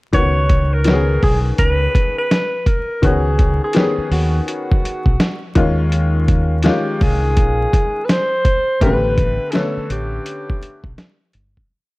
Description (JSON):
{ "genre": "hip hop, jazz-hop", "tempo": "83 BPM", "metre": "4/4", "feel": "swing 64% on 16ths", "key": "unclear", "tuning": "A4 = 442 Hz", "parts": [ { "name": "breathy alto saxophone", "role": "melody", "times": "0.1-11.0 s", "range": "F#4 to C#5", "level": "-20 LUFS", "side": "equal", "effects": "none" }, { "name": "bright upright piano", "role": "accompaniment", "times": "0.1-10.9 s", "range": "C#3 to G#4", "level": "-21 LUFS", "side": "left 2 dB", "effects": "none" }, { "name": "deep dub fingered electric bass", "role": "bass", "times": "0.1-11.6 s", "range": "G1 to D#2", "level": "-18 LUFS", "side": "equal", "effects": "none" }, { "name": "lo-fi sampler-style drum kit", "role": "drums", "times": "0.1-11.7 s", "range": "hi-hat, kick drum, snare drum", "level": "-17 LUFS", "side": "equal", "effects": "overdrive" } ], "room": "small room ambience", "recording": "dark, warm production, vinyl crackle", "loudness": "-14 LUFS", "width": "side -21 dB against mid", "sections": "0.1-11.7 head", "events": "fade-out 8.8-11.7", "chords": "0.1 C#9sus4; 5.6 D#9sus4; 8.8 A9sus4", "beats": "| 0.14 0.86 1.58 2.31 | 3.03 3.75 4.47 5.20 | 5.92 6.64 7.37 8.09 | 8.81 9.54 10.26 10.98" }